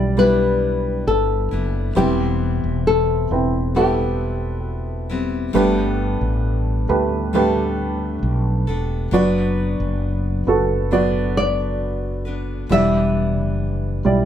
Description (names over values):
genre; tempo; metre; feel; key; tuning
pop ballad; 67 BPM; 4/4; straight; E minor; A4 = 440 Hz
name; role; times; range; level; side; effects
flamenco guitar; melody; 0.0-5.1, 11.4-14.3 s; G4 to E5; -21 LUFS; left 3 dB; none
warm upright piano; accompaniment; 0.0-14.3 s; G2 to D5; -22 LUFS; right 3 dB; none
picked steel-string acoustic guitar; arpeggios; 0.0-14.3 s; E2 to B4; -25 LUFS; left 5 dB; none
mellow fretless electric bass; bass; 0.0-14.3 s; E1 to D2; -22 LUFS; equal; none
room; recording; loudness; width
moderate studio reverb, RT60 0.7 s; band playing live in one room; -17 LUFS; side -10 dB against mid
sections
0.0-14.3 A section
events
none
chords
0.0 Em7; 2.0 Cmaj7/E; 5.5 Gadd9; 9.1 Bm/F#; 12.7 Em7